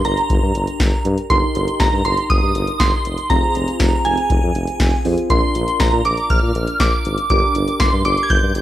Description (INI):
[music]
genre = synth-pop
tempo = 120 BPM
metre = 4/4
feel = straight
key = unclear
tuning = A4 = 437 Hz
[part]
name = shimmering bell with halo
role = melody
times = 0.0-8.6 s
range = Ab5 to Ab6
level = -19 LUFS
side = right 1 dB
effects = ensemble chorus, analog delay
[part]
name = soft electric-piano-like synth keys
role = accompaniment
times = 0.0-8.6 s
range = C4 to Bb4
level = -25 LUFS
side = equal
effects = chorus, phaser
[part]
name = warm tuba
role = bass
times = 0.0-8.6 s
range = F1 to Bb2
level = -21 LUFS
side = equal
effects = none
[part]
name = electro analog drum machine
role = drums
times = 0.0-8.6 s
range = hi-hat, kick drum, snare drum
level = -19 LUFS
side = equal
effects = none
[sound]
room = little or no reverb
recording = dry, gritty hardware recording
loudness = -15 LUFS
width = side -13 dB against mid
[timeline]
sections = 0.0-8.6 A section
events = none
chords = 0.0 Gm; 1.3 Eb/G; 3.3 Fm; 5.3 Bb; 7.3 Gm